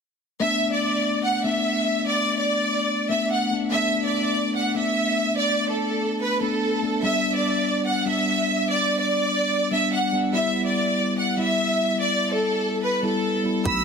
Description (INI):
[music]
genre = hip hop, drill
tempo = 145 BPM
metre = 4/4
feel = half-time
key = B minor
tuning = A4 = 439 Hz
[part]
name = clear studio violin section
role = melody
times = 0.4-13.8 s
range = A4 to E6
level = -22 LUFS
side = right 1 dB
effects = ping-pong delay
[part]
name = mellow tine electric piano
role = accompaniment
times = 0.4-13.8 s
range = G3 to F#4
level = -25 LUFS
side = left 2 dB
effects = slow stereo tremolo
[part]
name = concert flute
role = second line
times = 13.7-13.8 s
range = B5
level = -27 LUFS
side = right 11 dB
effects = none
[part]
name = airy breathy pad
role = sustained chords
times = 13.8 s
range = D3 to A4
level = -41 LUFS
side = right 4 dB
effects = none
[part]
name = growling 808-style bass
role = bass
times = 13.7-13.8 s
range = B1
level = -27 LUFS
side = right 1 dB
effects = none
[part]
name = drill drum kit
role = drums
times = 13.7-13.8 s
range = hi-hat, kick drum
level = -28 LUFS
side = right 1 dB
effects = none
[sound]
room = moderate digital room reverb, RT60 1.1 s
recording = dense, heavily limited modern master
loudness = -20 LUFS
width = side -6 dB against mid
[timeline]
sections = 0.4-13.7 A section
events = none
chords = 0.4 Bm7; 7.0 G; 10.3 Em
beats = | 0.41 0.83 1.24 1.66 | 2.07 2.48 2.90 3.31 | 3.72 4.14 4.55 4.96 | 5.38 5.79 6.21 6.62 | 7.03 7.45 7.86 8.28 | 8.69 9.10 9.52 9.93 | 10.35 10.76 11.17 11.59 | 12.00 12.41 12.83 13.24 | 13.65